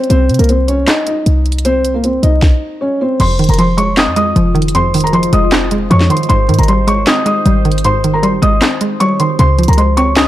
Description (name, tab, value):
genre	hip hop, trap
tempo	155 BPM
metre	4/4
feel	half-time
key	F minor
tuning	A4 = 439 Hz
part	felt-muted upright piano	melody	0.0-10.3 s	Bb3 to Eb6	-15 LUFS	equal	digital delay
part	trap drum kit	drums	0.0-10.3 s	crash cymbal, handclaps, hi-hat, kick drum, snare drum	-16 LUFS	equal	none
part	short 808-style bass	bass	0.1-10.3 s	F1 to C3	-14 LUFS	equal	none
part	hollow square pluck	accompaniment	3.2-10.3 s	F2 to Db4	-14 LUFS	right 1 dB	chorus
part	deep dark ambient pad	sustained chords	4.1-10.3 s	Db3 to C5	-23 LUFS	left 3 dB	chorus, built-in reverb, phaser
room	digital ambience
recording	dark, warm production, vinyl crackle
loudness	-10 LUFS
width	side -14 dB against mid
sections	0.0-3.2 A section; 3.2-10.3 B section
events	break 0.0-3.2; kick muted 8.6-9.4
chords	0.1 Cm; 3.2 Fm7; 6.3 Abmaj7; 9.4 Dbmaj7